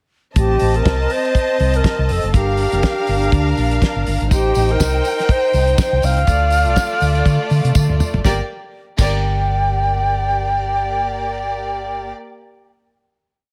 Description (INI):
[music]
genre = disco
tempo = 122 BPM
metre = 4/4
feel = swing 56% on 16ths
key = G minor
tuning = A4 = 440 Hz
[part]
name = reedy alto flute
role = melody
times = 0.4-12.1 s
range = G4 to G5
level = -22 LUFS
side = equal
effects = none
[part]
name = warm studio violin section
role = second line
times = 0.4-12.1 s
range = A3 to A5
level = -25 LUFS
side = equal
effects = none
[part]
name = hollow-body short-scale fingered electric bass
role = bass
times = 0.4-12.1 s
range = F1 to D3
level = -21 LUFS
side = equal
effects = none
[part]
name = damped 70s drum kit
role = drums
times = 0.4-9.1 s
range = crash cymbal, hi-hat, kick drum, snare drum, toms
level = -21 LUFS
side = equal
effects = none
[part]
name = tambourine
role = percussion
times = 4.3-9.1 s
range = none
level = -34 LUFS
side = equal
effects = none
[sound]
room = light reverb, small room ambience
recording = none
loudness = -17 LUFS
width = mono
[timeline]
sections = 0.4-8.2 pre-chorus; 8.2-12.2 final chord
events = drum fill 7.8-8.2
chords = 0.4 Adim; 2.3 Gm7; 4.3 Am7b5; 6.3 Dm; 8.2 Gm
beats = | 0.36 0.86 1.35 1.85 | 2.34 2.83 3.33 3.82 | 4.31 4.80 5.29 5.79 | 6.28 6.77 7.26 7.75 | 8.24 8.74 9.23 9.72 | 10.21 10.71 11.20 11.70